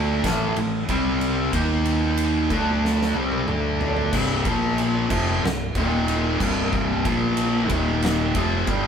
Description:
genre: stoner and doom metal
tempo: 92 BPM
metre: 4/4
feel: straight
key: C dorian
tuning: A4 = 441 Hz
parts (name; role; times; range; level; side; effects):
- fuzz guitar; riff; 0.0-8.9 s; C2 to Eb4; -21 LUFS; equal; distortion
- fingered electric bass; bass; 0.0-8.9 s; C1 to Eb2; -27 LUFS; equal; overdrive
- oversized low-tuned drum kit; drums; 0.2-8.8 s; crash cymbal, kick drum, ride cymbal, snare drum, toms; -27 LUFS; equal; none
room: light reverb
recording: band playing live in one room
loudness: -20 LUFS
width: side -7 dB against mid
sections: 0.0-4.1 A section; 4.1-8.9 B section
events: drum fill 2.8-4.1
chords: 0.2 A5; 0.9 C5; 1.5 Eb5; 2.5 D5; 3.2 C5; 3.5 D5; 4.1 C5; 4.5 Bb5; 5.1 C5; 5.8 Eb5; 6.4 C5; 7.1 Bb5; 7.7 Eb5; 8.4 F5

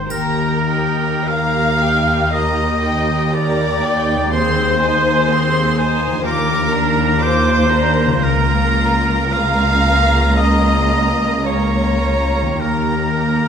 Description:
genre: classical, slow romantic movement for symphony orchestra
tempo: 49-63 BPM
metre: 4/4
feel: rubato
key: Eb major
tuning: A4 = 439 Hz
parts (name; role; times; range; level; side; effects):
- clear oboe; second line; 0.0-13.5 s; Bb4 to F5; -20 LUFS; right 2 dB; none
- rich chamber violin section; second line; 0.0-13.5 s; Bb4 to F5; -22 LUFS; left 4 dB; none
- concert harp; arpeggios; 0.0-13.5 s; Db3 to Bb4; -23 LUFS; left 8 dB; none
- rich chamber violin section; melody; 0.1-13.5 s; G5 to D6; -24 LUFS; equal; none
- rich chamber viola section; accompaniment; 0.1-13.5 s; Bb3 to C5; -23 LUFS; right 1 dB; none
- rich chamber cello section; bass; 0.1-13.5 s; Db2 to Eb2; -22 LUFS; right 1 dB; none
- rich chamber double bass section; bass; 0.1-13.5 s; Db2 to Eb2; -21 LUFS; right 1 dB; none
- triangle; percussion; 0.1-2.3 s; none; -36 LUFS; left 3 dB; none
room: moderate scoring stage reverb, RT60 1.5 s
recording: minimal, uncompressed stereo recording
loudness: -14 LUFS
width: side -7 dB against mid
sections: 0.1-13.5 A section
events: none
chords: 0.1 Eb; 4.3 Ab/Eb; 6.3 Bb/Eb; 8.2 Bbm/Db; 12.6 Eb

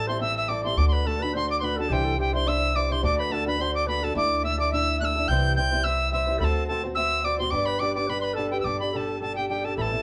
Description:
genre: celtic folk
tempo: 213 BPM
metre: 4/4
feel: swing 54% on 8ths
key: G major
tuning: A4 = 440 Hz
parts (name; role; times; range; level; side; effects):
- bright reedy tin whistle; melody; 0.0-10.0 s; G5 to G6; -29 LUFS; equal; none
- bright reedy baroque flute; second line; 0.0-10.0 s; G4 to G5; -34 LUFS; equal; none
- fingerpicked old ladder-braced acoustic guitar; accompaniment; 0.0-10.0 s; A2 to C5; -32 LUFS; equal; none
- upright bass; bass; 0.0-10.0 s; G1 to D2; -31 LUFS; equal; none
room: moderate studio reverb, RT60 0.6 s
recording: band playing live in one room, nothing above 10.4 kHz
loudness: -25 LUFS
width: mono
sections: 0.0-8.6 A section; 8.6-10.0 B section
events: none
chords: 0.0 Am7; 0.8 D; 1.9 Cadd9; 3.0 D; 4.2 Dsus2; 5.3 C; 6.4 D7; 7.5 G; 8.6 Gsus2

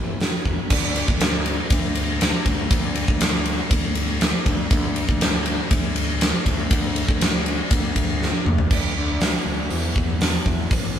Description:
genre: classic rock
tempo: 120 BPM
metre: 4/4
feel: straight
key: unclear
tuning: A4 = 440 Hz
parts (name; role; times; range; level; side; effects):
- fuzz picked electric bass; bass; 0.0-11.0 s; A1 to E2; -26 LUFS; equal; overdrive
- huge arena drum kit; drums; 0.2-10.8 s; crash cymbal, hi-hat, kick drum, ride cymbal, snare drum, toms; -20 LUFS; equal; none
room: moderate studio reverb, RT60 0.6 s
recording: band playing live in one room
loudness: -19 LUFS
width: side -9 dB against mid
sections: 0.7-8.7 A section; 8.7-11.0 B section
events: drum fill 8.2-8.7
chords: none

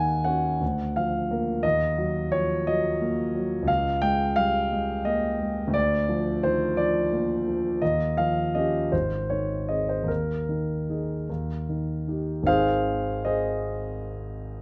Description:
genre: classical, romantic character piece for solo piano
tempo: 50-60 BPM (dotted quarters)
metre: 6/8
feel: rubato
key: Ab major from 3.7 s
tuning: A4 = 439 Hz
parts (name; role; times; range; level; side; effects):
- warm concert grand piano; solo; 0.0-14.6 s; Ab1 to Ab5; -26 LUFS; equal; none
room: light reverb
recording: close, detailed microphones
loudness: -26 LUFS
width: mono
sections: 0.0-12.5 A section; 12.5-14.6 B section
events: none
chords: 0.0 Ebm7; 0.6 Bb/D; 1.6 Ebm; 3.7 Bbm7/Db; 5.7 Bb/D; 7.8 Eb9; 8.9 Ab; 10.1 Ebsus4; 11.3 Eb; 12.5 Ab

